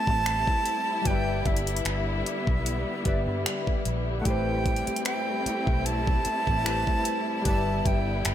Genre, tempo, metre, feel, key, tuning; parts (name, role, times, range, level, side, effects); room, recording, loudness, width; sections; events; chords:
contemporary R&B; 75 BPM; 4/4; swing 54% on 16ths; A minor; A4 = 440 Hz
breathy bright jazz flute; melody; 0.0-8.3 s; E5 to A5; -30 LUFS; right 2 dB; ping-pong delay
warm analog keys; accompaniment; 0.0-8.3 s; G3 to E5; -32 LUFS; left 2 dB; chorus
warm studio string section; sustained chords; 0.0-8.3 s; D3 to E4; -32 LUFS; left 2 dB
vintage muted fingered electric bass; bass; 0.1-8.3 s; G1 to G2; -30 LUFS; equal
smooth R&B drum kit; drums; 0.1-8.3 s; finger snaps, hi-hat, kick drum; -28 LUFS; equal
light reverb; -24 LUFS; side -11 dB against mid
0.0-8.3 A section
0.0 Am7; 1.1 Em7/G; 4.3 Am7; 7.5 Em7/G